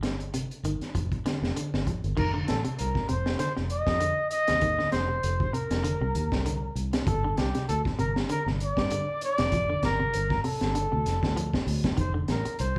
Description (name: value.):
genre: afrobeat.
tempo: 98 BPM.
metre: 4/4.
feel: swing 55% on 16ths.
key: F mixolydian.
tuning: A4 = 439 Hz.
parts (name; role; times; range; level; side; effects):
semi-hollow electric guitar; arpeggios; 0.0-12.5 s; G2 to F3; -36 LUFS; equal; none.
fingered electric bass; bass; 0.0-12.7 s; F1 to G2; -33 LUFS; equal; none.
crunchy breakbeat drum kit; drums; 0.0-12.8 s; crash cymbal, hi-hat, kick drum, snare drum; -33 LUFS; equal; none.
breathy trumpet; melody; 2.2-12.8 s; G4 to Eb5; -32 LUFS; equal; none.
room: moderate large studio reverb, RT60 0.8 s.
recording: band playing live in one room.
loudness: -28 LUFS.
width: mono.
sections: 0.0-2.2 A section; 2.2-12.8 B section.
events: none.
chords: 0.0 F5; 2.2 F7sus4; 7.1 G7(no3); 12.0 F5.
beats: 0.34 0.95 1.56 | 2.18 2.79 3.40 4.01 | 4.62 5.24 5.85 6.46 | 7.07 7.68 8.30 8.91 | 9.52 10.13 10.75 11.36 | 11.98 12.59.